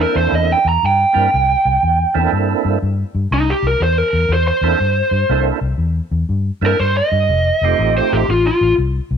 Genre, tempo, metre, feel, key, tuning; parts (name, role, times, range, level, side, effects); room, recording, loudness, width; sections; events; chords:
blues; 121 BPM; 4/4; swing 65% on 8ths; C mixolydian; A4 = 440 Hz
lead guitar through a small cranked amp; melody; 0.0-8.7 s; Eb4 to Bb5; -15 LUFS; right 2 dB; overdrive
percussive tonewheel organ; accompaniment; 0.0-8.3 s; A3 to Bb4; -20 LUFS; right 12 dB; overdrive, chorus vibrato, slow rotary speaker
vintage muted fingered electric bass; bass; 0.0-9.2 s; F1 to G2; -18 LUFS; left 2 dB
light reverb; 1960s-style stereo; -13 LUFS; side -7 dB against mid
0.0-9.2 A section
lead electric guitar solo 0.0-9.2
0.0 C13; 7.3 F9